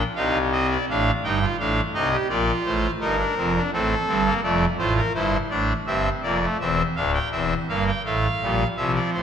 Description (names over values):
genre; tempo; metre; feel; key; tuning
classical, baroque-style 3-part fugue for pipe organ; 84 BPM; 4/4; straight; unclear; A4 = 435 Hz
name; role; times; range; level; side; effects
pipe organ, trumpet; solo; 0.0-9.2 s; D1 to G5; -20 LUFS; equal; none
room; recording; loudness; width
wet scoring stage reverb, RT60 1.6 s; none; -20 LUFS; side -8 dB against mid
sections
0.0-9.2 A section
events
none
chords
0.0 Adim (rootless); 0.9 F7; 2.3 Bb; 3.7 F; 5.1 Em/G; 6.6 C7; 8.0 F/A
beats
0.16 | 0.87 1.58 2.29 3.00 | 3.72 4.43 5.15 5.87 | 6.59 7.31 8.04 8.76